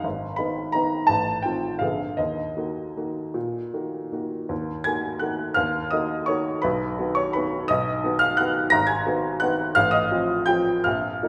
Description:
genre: classical, piano waltz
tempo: 150-184 BPM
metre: 3/4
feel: rubato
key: Eb minor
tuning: A4 = 444 Hz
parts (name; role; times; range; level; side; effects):
- clear upright piano; solo; 0.0-11.3 s; Ab1 to Bb6; -24 LUFS; equal; none
room: wet recital hall reverb, RT60 1.5 s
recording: recorded in a church or concert hall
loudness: -24 LUFS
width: mono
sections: 0.0-4.5 A section; 4.5-11.3 A section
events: none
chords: 0.0 Abm; 1.1 F7/A; 1.8 Bb7b9; 2.2 Ebm; 6.6 B; 8.7 Abm7; 9.8 F7/A

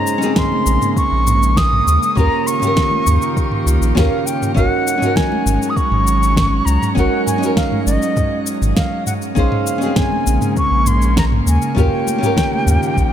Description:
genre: sunset chillout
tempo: 100 BPM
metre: 4/4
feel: straight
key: Bb minor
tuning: A4 = 440 Hz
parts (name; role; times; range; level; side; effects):
- concert flute; melody; 0.0-13.1 s; Eb5 to Eb6; -20 LUFS; left 1 dB; ping-pong delay, shimmer reverb
- nylon-string guitar; accompaniment; 0.0-13.1 s; C4 to C5; -21 LUFS; equal; auto-pan, shimmer reverb
- airy breathy pad; sustained chords; 0.0-13.1 s; Db3 to G4; -22 LUFS; right 2 dB; chorus, shimmer reverb
- smooth R&B drum kit; drums; 0.1-13.1 s; shaker, snare drum, toms; -22 LUFS; equal; none
- electronic kick drum; drums; 0.4-13.1 s; none; -20 LUFS; equal; none
- congas; percussion; 0.4-12.6 s; none; -28 LUFS; left 3 dB; none
- round analog bass; bass; 0.7-13.1 s; Ab1 to Eb2; -16 LUFS; equal; none
room: moderate lush hall reverb, RT60 1.9 s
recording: none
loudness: -13 LUFS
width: side -10 dB against mid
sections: 0.0-13.1 A section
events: none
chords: 0.0 Bbm11; 2.2 Eb7; 4.6 Ab9sus4; 9.4 Bbm11; 11.8 Eb7

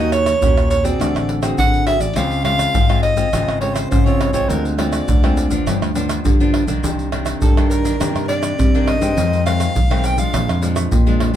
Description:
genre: samba and choro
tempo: 103 BPM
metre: 4/4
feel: straight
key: unclear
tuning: A4 = 440 Hz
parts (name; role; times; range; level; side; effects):
- breathy soprano saxophone; melody; 0.0-10.7 s; A4 to G5; -21 LUFS; equal; none
- nylon-string guitar; accompaniment; 0.0-11.4 s; F2 to Ab4; -21 LUFS; left 2 dB; none
- modern bright fingered electric bass; bass; 0.0-11.4 s; G1 to D3; -21 LUFS; equal; none
- tube shaker, pandeiro, tamborim and surdo; percussion; 0.1-11.4 s; none; -18 LUFS; equal; none
room: wet small room ambience, RT60 0.5 s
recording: band playing live in one room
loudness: -14 LUFS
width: side -10 dB against mid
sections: 0.0-11.4 A section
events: none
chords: 0.0 Ebm7; 1.0 D7#11; 2.2 Dbmaj7; 4.5 Dm7b5; 5.7 G7; 6.8 Cm9; 9.2 Fm7; 10.3 Bb7

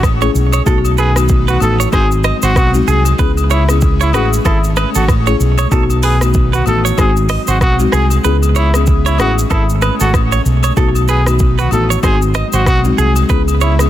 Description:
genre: afrobeats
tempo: 95 BPM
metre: 4/4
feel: swing 58% on 16ths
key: C# minor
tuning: A4 = 442 Hz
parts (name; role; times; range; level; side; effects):
- airy breathy pad; sustained chords; 0.0-13.9 s; C#3 to E4; -24 LUFS; equal; chorus
- fingered electric bass; bass; 0.0-13.9 s; G#1 to C#2; -14 LUFS; equal; none
- afro-pop drum kit; drums; 0.0-13.9 s; hi-hat, kick drum, rim click, shaker; -16 LUFS; equal; soft clipping on snare
- agogo bells; percussion; 0.0-13.9 s; none; -25 LUFS; left 11 dB; none
- folk marimba with soft mallets; accompaniment; 0.2-13.9 s; G#3 to G#4; -19 LUFS; left 5 dB; none
- direct-recorded clean electric guitar; riff; 0.2-13.7 s; G#4 to D#5; -21 LUFS; right 11 dB; digital delay
- clear trumpet; melody; 1.0-13.8 s; E4 to A4; -19 LUFS; equal; digital delay
room: digital ambience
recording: dense, heavily limited modern master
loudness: -10 LUFS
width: side -12 dB against mid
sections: 0.0-13.9 A section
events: kick muted 8.2-8.9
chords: 0.0 Amaj7; 0.7 B7; 1.9 G#7; 3.2 C#m7; 4.1 Amaj7; 5.7 B7; 7.0 G#7; 8.2 C#m7; 9.2 Amaj7; 10.8 B7; 12.0 G#7; 13.3 C#m7

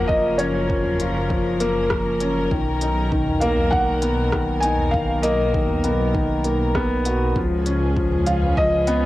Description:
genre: piano and strings electronica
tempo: 99 BPM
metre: 4/4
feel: straight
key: unclear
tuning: A4 = 441 Hz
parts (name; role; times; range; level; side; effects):
- felt-muted upright piano; melody; 0.0-9.1 s; C#5 to G#5; -24 LUFS; equal; cassette tape, plate reverb
- clear studio string section; sustained chords; 0.0-9.1 s; D#3 to B4; -31 LUFS; left 1 dB; sidechain pumping, cassette tape, plate reverb
- warm concert grand piano; riff; 0.0-9.1 s; D#3 to F#4; -22 LUFS; left 1 dB; cassette tape, analog delay
- dark detuned saw bass; bass; 0.0-9.1 s; F#1 to C#2; -24 LUFS; equal; sidechain pumping
- electronic kick drum; drums; 0.1-8.7 s; none; -26 LUFS; equal; cassette tape
- organic electronic drum kit; drums; 0.4-9.0 s; hi-hat, rim click, toms; -30 LUFS; equal; cassette tape
room: moderate studio reverb, RT60 0.6 s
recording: home recording on cassette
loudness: -18 LUFS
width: side -16 dB against mid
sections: 0.0-9.1 A section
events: none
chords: 0.0 F#maj7; 2.5 Bmaj7; 7.4 C#7

